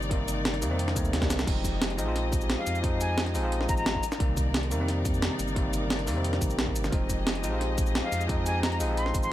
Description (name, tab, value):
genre	liquid drum and bass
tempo	176 BPM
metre	4/4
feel	straight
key	F minor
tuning	A4 = 439 Hz
part	bell-like tine electric piano	accompaniment	0.0-9.3 s	C3 to F4	-32 LUFS	equal	tape echo
part	dark studio string section	sustained chords	0.0-9.3 s	Eb4 to Eb5	-37 LUFS	left 3 dB	none
part	warm sub bass	bass	0.0-9.3 s	F1 to F2	-31 LUFS	equal	none
part	breakbeat sampler-style drum kit	drums	0.0-9.3 s	crash cymbal, hi-hat, shaker, snare drum	-31 LUFS	right 1 dB	small room ambience
part	electronic kick drum	drums	0.1-9.2 s	none	-30 LUFS	equal	small room ambience
part	breathy bright concert flute	melody	2.6-4.1, 8.0-9.3 s	F5 to C6	-35 LUFS	left 1 dB	ping-pong delay
room	little or no reverb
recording	none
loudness	-25 LUFS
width	side -13 dB against mid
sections	0.0-1.5 A section; 1.5-9.3 A section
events	drop 0.0-1.5, 1.5-9.3; drum fill 1.1-1.5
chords	0.0 Cm7; 1.5 Fm7; 4.0 Cm7; 6.9 Fm7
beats	| 0.11 0.45 0.79 1.13 | 1.47 1.81 2.15 2.50 | 2.84 3.18 3.52 3.86 | 4.20 4.54 4.88 5.22 | 5.56 5.90 6.25 6.59 | 6.93 7.27 7.61 7.95 | 8.29 8.63 8.97 9.31